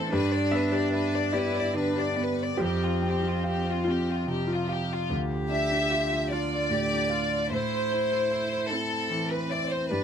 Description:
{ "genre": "neoclassical piano and strings", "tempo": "49 BPM (dotted quarters)", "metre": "6/8", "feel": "rubato", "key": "A minor", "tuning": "A4 = 440 Hz", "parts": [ { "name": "rich studio violin section", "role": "melody", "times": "0.0-10.0 s", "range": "F4 to E5", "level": "-28 LUFS", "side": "left 2 dB", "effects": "none" }, { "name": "warm cello", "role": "second line", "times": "0.0-10.0 s", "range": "B3 to G4", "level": "-33 LUFS", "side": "right 5 dB", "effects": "none" }, { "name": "warm concert grand piano", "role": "accompaniment", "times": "0.0-10.0 s", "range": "D2 to A5", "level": "-29 LUFS", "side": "right 1 dB", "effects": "none" }, { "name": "concert harp", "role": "arpeggios", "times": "0.0-10.0 s", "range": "D4 to A5", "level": "-36 LUFS", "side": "left 4 dB", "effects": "none" } ], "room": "light reverb", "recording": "close, detailed microphones", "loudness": "-25 LUFS", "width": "side -8 dB against mid", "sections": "0.0-5.1 A section; 5.1-10.0 A section", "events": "none", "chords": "0.1 G6; 2.6 Fsus2; 5.1 Dm; 7.5 Am", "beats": "| 0.12 1.33 | 2.59 3.85 | 5.10 6.32 | 7.51 8.71 | 9.91" }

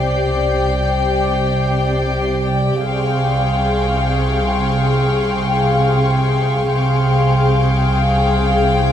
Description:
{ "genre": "cinematic, suspense film score", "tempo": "free time", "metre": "none", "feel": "none", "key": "unclear", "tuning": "A4 = 440 Hz", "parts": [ { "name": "warm chamber violin section", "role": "melody", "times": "0.0-8.9 s", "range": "G5", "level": "-24 LUFS", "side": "left 5 dB", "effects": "none" }, { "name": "warm symphonic violin section", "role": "second line", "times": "0.0-8.9 s", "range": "G4 to F5", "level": "-21 LUFS", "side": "left 2 dB", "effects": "none" }, { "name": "glassy FM pad", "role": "sustained chords", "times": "0.0-8.9 s", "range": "G4 to G5", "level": "-23 LUFS", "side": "left 3 dB", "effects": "ensemble chorus, built-in reverb" }, { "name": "dark chamber cello section", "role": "bass", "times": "0.0-8.9 s", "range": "C3", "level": "-20 LUFS", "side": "right 2 dB", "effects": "none" }, { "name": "dark chamber double bass section", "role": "bass", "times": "0.0-8.9 s", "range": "C2", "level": "-20 LUFS", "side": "right 1 dB", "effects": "none" }, { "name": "dark studio violin section", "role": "texture", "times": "0.0-8.9 s", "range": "C6 to C7", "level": "-29 LUFS", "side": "left 1 dB", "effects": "none" }, { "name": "vibraphone with medium hard mallets", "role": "texture", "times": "0.0-8.9 s", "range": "Ab4 to G5", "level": "-27 LUFS", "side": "left 1 dB", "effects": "none" } ], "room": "moderate scoring stage reverb, RT60 1.5 s", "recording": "dark, warm production", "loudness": "-14 LUFS", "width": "side -9 dB against mid", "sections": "0.0-8.9 A section", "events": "none", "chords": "0.0 Csus2; 2.9 Fmadd9/C", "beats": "free time" }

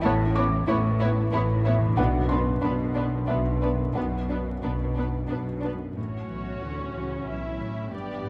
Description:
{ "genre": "cinematic, emotional film score for orchestra", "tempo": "92 BPM", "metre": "3/4", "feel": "rubato", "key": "unclear", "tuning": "A4 = 440 Hz", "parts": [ { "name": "muted studio violin section", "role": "melody", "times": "0.0-8.3 s", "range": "B4 to E5", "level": "-40 LUFS", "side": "equal", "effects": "none" }, { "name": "muted studio violin section", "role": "second line", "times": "0.0-8.3 s", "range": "D4 to G4", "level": "-37 LUFS", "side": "equal", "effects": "none" }, { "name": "felt-muted upright piano", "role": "accompaniment", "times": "0.0-8.3 s", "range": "A1 to D6", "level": "-32 LUFS", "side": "equal", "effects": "none" }, { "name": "concert harp", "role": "arpeggios", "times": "0.0-8.3 s", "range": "G2 to D5", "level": "-38 LUFS", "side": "equal", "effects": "none" }, { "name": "muted studio cello section", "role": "bass", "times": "0.0-8.3 s", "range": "G2 to D3", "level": "-33 LUFS", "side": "equal", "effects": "none" }, { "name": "muted studio double bass section", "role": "bass", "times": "0.0-8.3 s", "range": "G1 to D2", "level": "-32 LUFS", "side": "equal", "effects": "none" }, { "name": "muted studio viola section", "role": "accompaniment", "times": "0.1-8.3 s", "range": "B3 to C#4", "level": "-37 LUFS", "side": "equal", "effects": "none" } ], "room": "wet concert hall reverb, RT60 2.2 s", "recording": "vinyl crackle", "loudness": "-26 LUFS", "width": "mono", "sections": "0.0-6.0 A section; 6.0-8.3 B section", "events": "none", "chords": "0.0 Aadd9; 2.0 Bm; 6.0 A7", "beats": "| 0.04 0.69 1.33 | 1.98 2.63 3.29 | 3.96 4.63 5.30 | 5.97 6.62 7.27 | 7.93" }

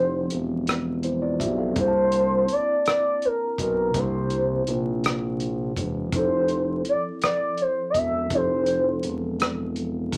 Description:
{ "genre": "slow six-eight R&B", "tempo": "55 BPM (dotted quarters)", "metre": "6/8", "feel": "straight", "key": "F major", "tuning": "A4 = 440 Hz", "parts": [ { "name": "gliding portamento lead", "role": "melody", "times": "0.0-9.1 s", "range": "Bb4 to E5", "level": "-25 LUFS", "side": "equal", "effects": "chorus" }, { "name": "mellow tine electric piano", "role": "accompaniment", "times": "0.0-10.2 s", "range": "C3 to A5", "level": "-32 LUFS", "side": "equal", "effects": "none" }, { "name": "smooth gliding synth bass", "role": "bass", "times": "0.0-10.2 s", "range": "E1 to C2", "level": "-30 LUFS", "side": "equal", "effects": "none" }, { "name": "warm soul drum kit", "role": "drums", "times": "0.3-10.2 s", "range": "hi-hat, kick drum, rim click", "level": "-31 LUFS", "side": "equal", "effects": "none" } ], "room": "light reverb", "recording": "vinyl crackle", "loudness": "-24 LUFS", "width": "mono", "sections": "0.0-10.2 A section", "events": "none", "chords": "0.0 Fmaj7; 1.8 C13; 6.1 Fmaj7", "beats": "0.67 | 1.76 2.85 | 3.94 5.03 | 6.12 7.22 | 8.31 9.40" }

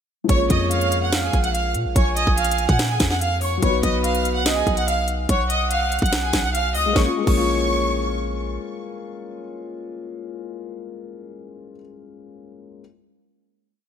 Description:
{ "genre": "hip hop, trap", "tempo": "144 BPM", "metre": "4/4", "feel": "half-time", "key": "Bb phrygian", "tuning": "A4 = 440 Hz", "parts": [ { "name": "dark concert grand piano", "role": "accompaniment", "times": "0.2-12.8 s", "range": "F3 to F#4", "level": "-28 LUFS", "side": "left 7 dB", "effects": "none" }, { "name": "rich studio violin section", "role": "melody", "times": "0.3-8.2 s", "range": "Ab4 to Gb6", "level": "-23 LUFS", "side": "right 1 dB", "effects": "digital delay" }, { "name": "breathy flute-like synth lead", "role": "second line", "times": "0.3-8.2 s", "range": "B4 to Ab5", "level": "-28 LUFS", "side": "right 5 dB", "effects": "chorus, digital delay" }, { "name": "warm 808-style bass", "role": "bass", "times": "0.3-8.6 s", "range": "Bb1 to Bb2", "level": "-24 LUFS", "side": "equal", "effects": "none" }, { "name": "trap drum kit", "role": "drums", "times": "0.3-7.4 s", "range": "crash cymbal, hi-hat, kick drum, snare drum", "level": "-22 LUFS", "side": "equal", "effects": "none" } ], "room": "light reverb, digital ambience", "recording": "bright 1980s-style digital production", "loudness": "-18 LUFS", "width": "side -8 dB against mid", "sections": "0.3-7.0 hook; 7.0-10.3 final chord", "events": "none", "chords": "0.3 Bbm7; 3.6 B; 7.0 Bbm7", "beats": "| 0.29 0.71 1.13 1.54 | 1.96 2.38 2.79 3.21 | 3.63 4.04 4.46 4.88 | 5.29 5.71 6.13 6.54 | 6.96 7.38 7.79 8.21 | 8.63 9.04 9.46 9.88" }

